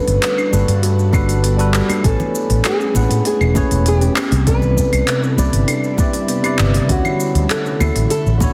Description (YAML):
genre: sunset chillout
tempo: 99 BPM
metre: 4/4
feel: straight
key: D major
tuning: A4 = 440 Hz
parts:
  - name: nylon-string guitar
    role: melody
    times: 0.0-8.5 s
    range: F#4 to B4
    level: -24 LUFS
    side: equal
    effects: delay, shimmer reverb
  - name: tine electric piano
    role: accompaniment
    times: 0.0-8.5 s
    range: C3 to G#5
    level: -24 LUFS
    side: equal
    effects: delay, shimmer reverb
  - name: ethereal airy pad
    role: sustained chords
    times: 0.0-8.5 s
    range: C3 to C#5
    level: -30 LUFS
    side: equal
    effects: none
  - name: fretless electric bass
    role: bass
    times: 0.1-8.4 s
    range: E1 to A2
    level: -18 LUFS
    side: equal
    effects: analog chorus
  - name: smooth R&B drum kit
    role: drums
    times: 0.1-8.5 s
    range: cabasa, claves, handclaps, hi-hat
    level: -26 LUFS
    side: equal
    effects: none
  - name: kalimba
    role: arpeggios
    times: 0.4-8.5 s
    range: B3 to G4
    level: -27 LUFS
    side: equal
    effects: delay, shimmer reverb
  - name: congas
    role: percussion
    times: 0.5-8.5 s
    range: none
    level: -29 LUFS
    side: equal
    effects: none
  - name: electronic kick drum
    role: drums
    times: 1.1-8.5 s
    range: none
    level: -21 LUFS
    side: equal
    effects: none
room: moderate lush hall reverb, RT60 2.6 s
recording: dense, heavily limited modern master, faint mains hum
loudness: -16 LUFS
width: mono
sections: 0.0-8.5 A section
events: none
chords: 0.0 Gmaj9; 2.0 Amaj9; 4.2 Cmaj9; 6.9 Dmaj9